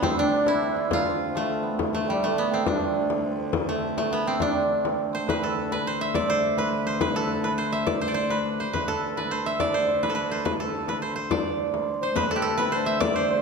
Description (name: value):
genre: medieval dance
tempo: 139 BPM (dotted quarters)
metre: 6/8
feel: straight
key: D dorian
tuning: A4 = 438 Hz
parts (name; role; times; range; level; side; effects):
- koto; melody; 0.0-13.4 s; G3 to E5; -27 LUFS; equal; none
- hammered dulcimer; second line; 0.0-13.4 s; G3 to E5; -28 LUFS; right 6 dB; none
- bright viola da gamba; drone; 0.0-13.4 s; D2; -32 LUFS; left 2 dB; none
- frame drum; percussion; 0.0-13.4 s; none; -30 LUFS; left 5 dB; none
- alto recorder; second line; 12.0-13.4 s; A4 to D5; -30 LUFS; left 5 dB; none
- riq; percussion; 12.2-13.1 s; none; -34 LUFS; left 4 dB; none
room: wet recital hall reverb, RT60 1.5 s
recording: none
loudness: -23 LUFS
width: side -4 dB against mid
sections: 0.0-5.3 A section; 5.3-12.2 B section; 12.2-13.4 B section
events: speeding up 0.0-13.4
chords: none